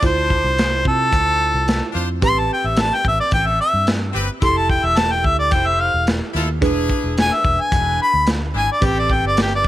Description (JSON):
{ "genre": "straight-eighth soul blues", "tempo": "109 BPM", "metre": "4/4", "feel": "straight", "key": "A minor", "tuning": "A4 = 440 Hz", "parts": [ { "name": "warm harmonica", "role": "melody", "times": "0.0-9.7 s", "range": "G4 to C6", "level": "-18 LUFS", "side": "left 1 dB", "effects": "overdrive" }, { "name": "tine electric piano", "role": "accompaniment", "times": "0.0-9.7 s", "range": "C4 to C5", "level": "-26 LUFS", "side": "right 5 dB", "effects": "phaser" }, { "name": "brilliant horn section", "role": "sustained chords", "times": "0.0-9.4 s", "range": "C4 to C5", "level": "-29 LUFS", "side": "left 2 dB", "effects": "none" }, { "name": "vintage muted fingered electric bass", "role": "bass", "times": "0.0-9.7 s", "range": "E1 to C3", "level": "-22 LUFS", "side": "equal", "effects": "none" }, { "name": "crunchy breakbeat drum kit", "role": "drums", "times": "0.0-9.7 s", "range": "hi-hat, kick drum, snare drum", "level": "-21 LUFS", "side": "equal", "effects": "none" } ], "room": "small room ambience", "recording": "none", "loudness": "-15 LUFS", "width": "side -14 dB against mid", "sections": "0.0-9.7 A section", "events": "harmonica solo 0.0-9.7", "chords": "0.0 Dm7; 2.2 Am7; 4.4 Fmaj7; 6.6 E7; 8.8 Am7" }